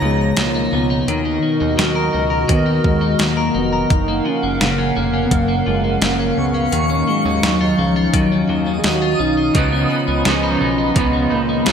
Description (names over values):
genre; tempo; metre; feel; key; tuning
dream pop; 85 BPM; 4/4; straight; B lydian; A4 = 440 Hz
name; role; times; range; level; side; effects
soft octave-layered synth lead; melody; 0.0-11.7 s; E#3 to G#4; -20 LUFS; equal; chorus, phaser, digital delay
hollow soft pad; sustained chords; 0.0-11.7 s; B2 to B5; -22 LUFS; equal; chorus
clean electric guitar; arpeggios; 0.0-11.7 s; F#2 to A#4; -22 LUFS; left 3 dB; wide subtle chorus, digital delay
fat analog bass; bass; 0.0-11.7 s; E#1 to D#2; -23 LUFS; right 1 dB; none
clean 12-bit digital drum machine; drums; 0.4-11.7 s; hi-hat, kick drum, snare drum; -20 LUFS; equal; overdrive, gated reverb
electric guitar at the edge of break-up; accompaniment; 9.5-11.7 s; C#3 to D#4; -21 LUFS; right 5 dB; tremolo, lush chorus
room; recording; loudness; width
moderate lush hall reverb, RT60 1.7 s; bright 1980s-style digital production; -15 LUFS; side -7 dB against mid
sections
0.0-11.7 A section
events
none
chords
0.0 C#9; 1.1 Bmaj7; 3.9 F#maj7; 6.7 D#m9; 9.6 C#9